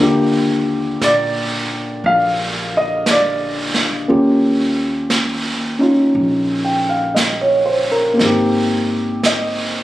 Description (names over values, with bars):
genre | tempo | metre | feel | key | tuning
jazz ballad | 58 BPM | 4/4 | swing 69% on 8ths | Eb major | A4 = 440 Hz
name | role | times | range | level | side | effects
warm grand piano | accompaniment | 0.0-9.8 s | D3 to G5 | -15 LUFS | equal | none
upright bass | bass | 0.0-9.8 s | Ab1 to Bb2 | -28 LUFS | equal | none
vintage brush drum kit | drums | 1.0-9.8 s | brushed snare drum, hi-hat, snare drum | -21 LUFS | right 2 dB | none
room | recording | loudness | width
light reverb | recorded on a phone in the room, studio ambience | -14 LUFS | side -15 dB against mid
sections
0.0-9.8 A section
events
none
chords
0.0 Ebmaj9; 4.1 Eb9; 8.2 Abmaj9